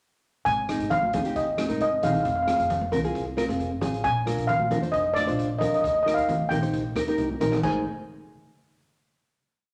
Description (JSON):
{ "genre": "calypso", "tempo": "134 BPM", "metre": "4/4", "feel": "straight", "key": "Ab major", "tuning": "A4 = 440 Hz", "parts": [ { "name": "steel pan", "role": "melody", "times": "0.5-7.8 s", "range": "D5 to Ab5", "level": "-27 LUFS", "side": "equal", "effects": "none" }, { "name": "upright bass", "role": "bass", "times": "0.5-7.8 s", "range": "F1 to F2", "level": "-35 LUFS", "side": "equal", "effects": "none" }, { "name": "street-band drum kit", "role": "drums", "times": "0.5-7.7 s", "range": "crash cymbal, hi-hat, kick drum, rim click", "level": "-41 LUFS", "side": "equal", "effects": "none" }, { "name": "nylon-string guitar", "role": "accompaniment", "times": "0.7-7.8 s", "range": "C4 to C5", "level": "-31 LUFS", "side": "equal", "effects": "none" }, { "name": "congas", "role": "percussion", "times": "0.7-7.8 s", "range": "none", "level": "-34 LUFS", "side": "equal", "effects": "none" } ], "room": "wet large studio reverb, RT60 1.2 s", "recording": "none", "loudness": "-25 LUFS", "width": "mono", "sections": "0.5-7.6 verse; 7.6-9.4 final chord", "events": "drum fill 7.2-7.6", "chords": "0.5 Ab; 2.2 Fm; 4.0 Bb7; 5.8 Eb6; 7.6 Ab" }